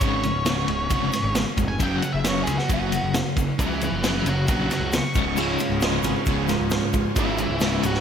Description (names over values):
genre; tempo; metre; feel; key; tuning
classic rock; 134 BPM; 4/4; straight; Db major; A4 = 440 Hz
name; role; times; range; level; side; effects
octave-fuzz lead guitar; melody; 0.0-8.0 s; Gb4 to Db6; -28 LUFS; equal; distortion, slapback echo
bright tonewheel organ; sustained chords; 0.0-8.0 s; Db4 to D5; -38 LUFS; equal; none
crunchy overdriven guitar; riff; 0.0-8.0 s; Db2 to Gb3; -28 LUFS; left 9 dB; tremolo
crunchy overdriven guitar; riff; 0.0-8.0 s; Db2 to Gb3; -29 LUFS; right 10 dB; spring reverb
fuzz picked electric bass; bass; 0.0-8.0 s; Db1 to Db2; -28 LUFS; equal; overdrive
vintage drum kit; drums; 0.0-8.0 s; crash cymbal, kick drum, ride cymbal, snare drum; -26 LUFS; equal; none
egg shaker; percussion; 0.0-7.9 s; none; -40 LUFS; left 12 dB; none
reed electric piano; accompaniment; 5.4-8.0 s; F4 to Eb5; -31 LUFS; right 8 dB; overdrive, slapback echo
overdriven electric guitar; riff; 5.4-8.0 s; Db2 to Db3; -29 LUFS; right 1 dB; phaser
room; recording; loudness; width
moderate lush hall reverb, RT60 1.7 s, small room ambience; big arena sound; -20 LUFS; side -8 dB against mid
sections
0.0-8.0 A section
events
lead electric guitar solo 0.0-8.0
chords
0.0 Db; 1.8 Gb; 5.2 Db